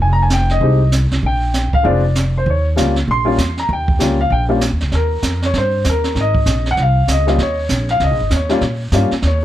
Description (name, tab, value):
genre	jazz piano trio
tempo	195 BPM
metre	4/4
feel	swing 63% on 8ths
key	Eb mixolydian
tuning	A4 = 441 Hz
part	warm upright piano	melody	0.0-9.4 s	G3 to C6	-18 LUFS	left 1 dB	none
part	upright bass	bass	0.0-9.4 s	F1 to Bb2	-16 LUFS	equal	none
part	jazz brush drum kit	drums	0.3-9.4 s	brushed snare drum, hi-hat, kick drum, snare drum	-21 LUFS	right 2 dB	none
room	little or no reverb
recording	none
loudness	-13 LUFS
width	side -13 dB against mid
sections	0.0-4.9 A section; 4.9-9.4 B section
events	upright piano solo 4.9-9.4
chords	0.0 Fm7; 1.2 Bb; 2.5 Eb7; 4.9 Eb; 6.2 Ab; 7.4 Eb7